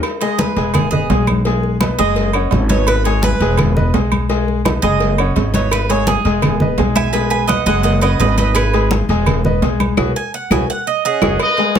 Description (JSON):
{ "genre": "latin, salsa", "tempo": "169 BPM", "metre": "4/4", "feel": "straight", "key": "unclear", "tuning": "A4 = 439 Hz", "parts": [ { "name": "agogo bells and timbales", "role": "percussion", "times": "0.0-11.8 s", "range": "none", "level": "-24 LUFS", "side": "right 12 dB", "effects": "none" }, { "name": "claves", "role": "percussion", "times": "0.0-11.6 s", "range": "none", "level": "-27 LUFS", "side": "left 8 dB", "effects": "none" }, { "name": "congas", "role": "percussion", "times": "0.0-11.8 s", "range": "none", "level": "-20 LUFS", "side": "left 1 dB", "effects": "none" }, { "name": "cowbell", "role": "percussion", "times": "0.0-11.8 s", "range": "none", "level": "-26 LUFS", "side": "left 4 dB", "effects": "none" }, { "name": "Cuban tres", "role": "melody", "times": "0.2-11.4 s", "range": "G#4 to G#5", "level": "-19 LUFS", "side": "right 7 dB", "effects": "none" }, { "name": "clear concert grand piano", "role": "accompaniment", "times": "0.2-11.8 s", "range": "G#3 to G#5", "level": "-20 LUFS", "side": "left 4 dB", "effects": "none" }, { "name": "upright bass", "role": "bass", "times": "0.6-11.3 s", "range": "E1 to B1", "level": "-18 LUFS", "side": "equal", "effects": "none" }, { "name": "warm horn section", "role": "melody", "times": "11.1-11.8 s", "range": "C#4 to D#5", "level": "-16 LUFS", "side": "equal", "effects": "none" } ], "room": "light reverb", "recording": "close, detailed microphones", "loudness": "-13 LUFS", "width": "side -8 dB against mid", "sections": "0.0-11.4 A section", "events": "Cuban tres solo 0.0-11.4; band accent 10.0-11.4; drum fill 10.3-11.4", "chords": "0.0 G#m; 0.7 Emaj7; 1.5 B6; 2.2 F#sus2; 2.9 Emaj7; 4.3 B6; 5.0 F#sus2; 5.7 Emaj7; 7.1 B6; 7.8 F#sus2; 8.6 Emaj7; 10.0 B5; 10.7 F#sus2" }